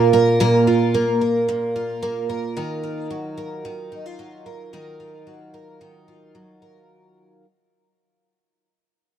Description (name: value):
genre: folktronica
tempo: 111 BPM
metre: 4/4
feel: straight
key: unclear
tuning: A4 = 440 Hz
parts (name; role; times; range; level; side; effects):
- picked twelve-string acoustic guitar; solo; 0.0-7.4 s; A#2 to A#4; -19 LUFS; right 2 dB; wide subtle chorus
room: studio ambience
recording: dry, close 1970s-style studio recording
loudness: -18 LUFS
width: side -9 dB against mid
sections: 0.0-6.9 A section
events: fade-out 0.0-6.9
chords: 0.0 A#5; 2.6 D#madd9